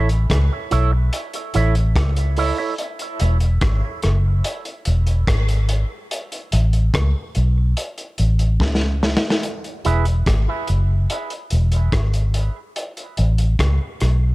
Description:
dub reggae; 72 BPM; 4/4; straight; E major; A4 = 440 Hz
electric guitar with an envelope filter; accompaniment; 0.0-2.7, 9.8-10.0 s; E4 to E5; -26 LUFS; right 5 dB; dub echo
vintage muted fingered electric bass; bass; 0.0-14.3 s; E1 to C#2; -16 LUFS; equal
crunchy breakbeat drum kit; drums; 0.1-14.2 s; hi-hat, kick drum, rim click, snare drum; -24 LUFS; equal
little or no reverb; echo-heavy mix; -17 LUFS; side -20 dB against mid
0.0-9.4 A section; 9.4-14.3 B section
drum fill 8.6-9.4
0.0 A; 2.8 E; 6.1 A; 9.4 E; 12.8 A

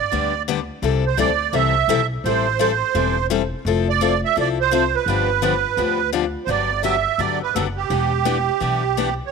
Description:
acoustic string swing (jazz manouche); 170 BPM; 4/4; swing 60% on 8ths; A4 = 441 Hz
musette accordion; melody; 0.0-9.3 s; G4 to E5; -20 LUFS; right 12 dB
picked steel-string acoustic guitar; accompaniment; 0.1-9.1 s; C3 to A4; -23 LUFS; left 12 dB
upright bass; bass; 0.1-9.2 s; E1 to D2; -25 LUFS; left 1 dB
light reverb, studio reverb; 1960s-style stereo with parts hard left and right; -17 LUFS; side -5 dB against mid
0.0-6.5 A section; 6.5-9.3 B section
0.0 G; 0.8 C6; 2.2 Am7; 3.7 Fmaj7; 5.1 G7; 6.5 Gmaj7; 7.9 Em7

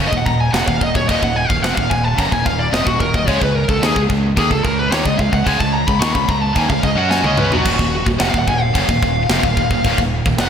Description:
heavy metal; 109 BPM; 4/4; straight; Eb minor; A4 = 440 Hz
high-gain distorted guitar; riff; 0.0-10.5 s; Eb2 to Gb4; -22 LUFS; left 7 dB; distortion
high-gain distorted guitar; riff; 0.0-10.5 s; Eb2 to Gb4; -21 LUFS; right 7 dB; distortion
growling fingered electric bass; bass; 0.0-10.5 s; Eb1 to Gb2; -22 LUFS; equal; overdrive
high-gain lead guitar; melody; 0.1-10.5 s; Gb4 to Db6; -19 LUFS; left 1 dB; distortion, slapback echo
tight metal drum kit; drums; 0.1-10.5 s; crash cymbal, kick drum, snare drum, toms; -20 LUFS; equal
moderate concert hall reverb, RT60 2.1 s; big arena sound; -14 LUFS; side -8 dB against mid
0.0-10.5 A section
lead electric guitar solo 0.0-10.5; drum fill 7.1-7.7
0.0 Ebm; 3.3 Db5; 7.7 Ebm

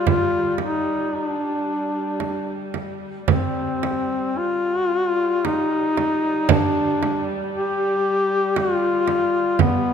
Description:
caucasian folk, Caucasian lament; 57 BPM; 3/4; rubato; A4 = 440 Hz
warm duduk; melody; 0.0-9.9 s; B3 to G4; -21 LUFS; left 2 dB
warm chamber string section; drone; 0.0-9.9 s; G3; -29 LUFS; right 2 dB
frame drum; percussion; 0.1-9.8 s; -22 LUFS; right 6 dB
moderate church reverb, RT60 2.8 s; minimal, uncompressed stereo recording; -19 LUFS; side -7 dB against mid
0.0-9.9 A section

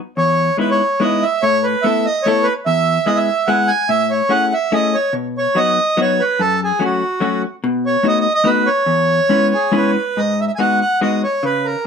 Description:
musette waltz; 144 BPM; 3/4; rubato; E major; A4 = 441 Hz
accordion; melody; 0.2-11.9 s; F#4 to G#5; -16 LUFS; right 2 dB; slapback echo
vintage hollow-body jazz guitar; accompaniment; 0.2-11.7 s; E2 to A4; -18 LUFS; left 4 dB
little or no reverb; close, detailed microphones; -14 LUFS; side -6 dB against mid
0.0-10.2 A section; 10.2-11.9 B section
0.2 Emaj7; 1.4 Asus2; 2.7 E; 3.9 Amaj7; 5.2 B; 6.4 F#m; 7.7 B7; 8.9 E6; 10.2 G#m7

